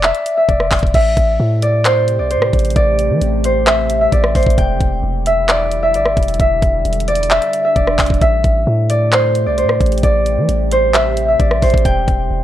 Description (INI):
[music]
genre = hip hop, trap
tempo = 132 BPM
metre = 4/4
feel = half-time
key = A minor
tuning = A4 = 440 Hz
[part]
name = Celtic harp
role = melody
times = 0.0-12.4 s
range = C5 to G5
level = -15 LUFS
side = equal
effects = low-pass filter
[part]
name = warm 808-style bass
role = bass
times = 0.0-12.4 s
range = E1 to E3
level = -18 LUFS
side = equal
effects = none
[part]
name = trap drum kit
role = drums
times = 0.0-12.2 s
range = crash cymbal, handclaps, hi-hat, kick drum, rim click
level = -16 LUFS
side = equal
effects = none
[part]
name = deep dark ambient pad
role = sustained chords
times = 1.7-12.4 s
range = C3 to G4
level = -25 LUFS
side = right 1 dB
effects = chorus, built-in reverb
[sound]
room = little or no reverb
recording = dry, gritty hardware recording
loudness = -12 LUFS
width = side -12 dB against mid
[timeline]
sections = 0.9-12.4 A section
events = none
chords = 0.0 E7(no3); 0.9 Am7; 4.6 Em7; 8.2 Am7; 11.9 Em7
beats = 0.03 0.49 | 0.94 1.40 1.85 2.31 | 2.76 3.21 3.67 4.12 | 4.58 5.03 5.49 5.94 | 6.40 6.85 7.31 7.76 | 8.21 8.67 9.12 9.58 | 10.03 10.49 10.94 11.40 | 11.85 12.31